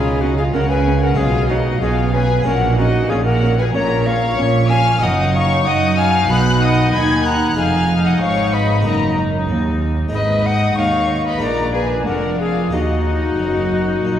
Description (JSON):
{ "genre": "classical, baroque-style concerto movement with solo episodes", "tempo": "94 BPM", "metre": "4/4", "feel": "straight", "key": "F# major, Eb minor from 5.0 s", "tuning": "A4 = 440 Hz", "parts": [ { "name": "bright alto recorder", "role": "melody", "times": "0.0-14.2 s", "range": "F#4 to B5", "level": "-20 LUFS", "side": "left 2 dB", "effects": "none" }, { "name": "warm studio violin section", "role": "melody", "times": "0.0-14.2 s", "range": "D#5 to Ab6", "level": "-24 LUFS", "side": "left 4 dB", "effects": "none" }, { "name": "rich studio violin section", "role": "second line", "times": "0.0-14.2 s", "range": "D#4 to Ab5", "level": "-25 LUFS", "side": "left 3 dB", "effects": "none" }, { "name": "harpsichord", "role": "accompaniment", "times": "0.0-14.2 s", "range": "Eb2 to Ab4", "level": "-29 LUFS", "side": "left 1 dB", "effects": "none" }, { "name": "dark chamber double bass section", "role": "bass", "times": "0.0-14.2 s", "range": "F1 to Gb2", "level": "-20 LUFS", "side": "right 2 dB", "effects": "none" }, { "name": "warm chamber cello section", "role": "bass", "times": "0.0-14.2 s", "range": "Eb2 to Gb3", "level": "-20 LUFS", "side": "right 2 dB", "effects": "none" }, { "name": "rich chamber viola section", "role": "accompaniment", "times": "0.2-14.2 s", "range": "C#4 to Eb4", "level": "-25 LUFS", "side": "left 1 dB", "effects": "none" } ], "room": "wet church reverb, RT60 2.7 s", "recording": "dark, warm production", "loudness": "-14 LUFS", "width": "side -10 dB against mid", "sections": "0.0-14.2 A section", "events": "none", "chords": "0.0 C#5; 1.2 C#5/B; 2.5 F#/A#; 5.0 Ebm/Gb; 6.3 B; 7.6 Fm7b5; 8.9 Ebm/Gb; 10.1 Ab5; 11.4 Bb7; 12.7 Ebm", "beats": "0.54 1.18 1.82 | 2.46 3.11 3.75 4.38 | 5.02 5.66 6.30 6.94 | 7.58 8.21 8.86 9.49 | 10.13 10.77 11.42 12.07 | 12.72 13.39 14.04" }